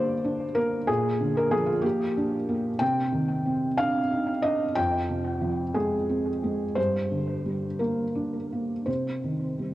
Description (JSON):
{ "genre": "neoclassical minimalist piano", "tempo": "55-63 BPM (dotted quarters)", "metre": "6/8", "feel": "rubato", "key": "C minor", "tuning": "A4 = 440 Hz", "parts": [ { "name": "felt-muted upright piano", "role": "solo", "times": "0.0-9.7 s", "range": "F2 to G5", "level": "-24 LUFS", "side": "equal", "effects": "cassette tape, analog delay" } ], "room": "moderate lush hall reverb, RT60 2.6 s", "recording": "home recording on cassette", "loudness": "-24 LUFS", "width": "side -15 dB against mid", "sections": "0.0-9.7 A section", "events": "none", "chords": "0.0 Gm; 0.9 Bb; 2.8 Cmadd9; 4.8 Fm; 6.8 Gm; 8.9 Cm" }